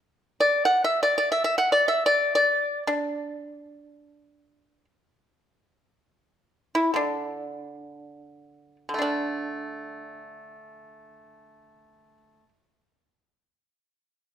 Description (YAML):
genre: chinese traditional, Chinese solo plucked strings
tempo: free time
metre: none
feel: none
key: unclear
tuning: A4 = 438 Hz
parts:
  - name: pipa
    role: solo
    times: 0.4-12.5 s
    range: D3 to F#5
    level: -23 LUFS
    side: equal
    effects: none
room: light reverb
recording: minimal, uncompressed stereo recording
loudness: -22 LUFS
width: side -9 dB against mid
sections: 0.0-9.0 A section; 9.0-13.0 B section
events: slowing down 1.3-9.0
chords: none